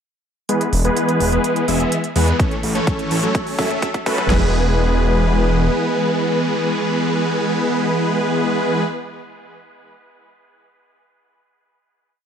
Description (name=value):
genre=EDM, festival progressive house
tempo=126 BPM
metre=4/4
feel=straight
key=E major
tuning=A4 = 439 Hz
part: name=supersaw chords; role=riff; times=0.5-8.8 s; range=E3 to E5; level=-18 LUFS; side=equal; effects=vintage 12-bit sampler grit, sidechain pumping, low-pass filter, dub echo
part: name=electronic hi-hat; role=drums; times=0.5-4.3 s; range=none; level=-28 LUFS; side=right 3 dB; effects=none
part: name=wide detuned saw bass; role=bass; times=0.7-5.7 s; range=E1 to F#2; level=-18 LUFS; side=equal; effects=chorus, sidechain pumping
part: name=big-room dance drum kit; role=drums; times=2.4-4.4 s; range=crash cymbal, kick drum, snare drum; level=-22 LUFS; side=equal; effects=overdrive
room=moderate digital room reverb, RT60 1.0 s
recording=dark, warm production, high-pass filter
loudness=-16 LUFS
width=side -8 dB against mid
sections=0.5-4.3 build; 4.3-8.1 final chord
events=build-up 0.5-4.3; filter sweep on supersaw synth 0.5-4.3; filter sweep 0.5-4.3; drum fill 2.4-4.3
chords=0.5 E; 2.4 A; 3.3 F#m; 4.3 E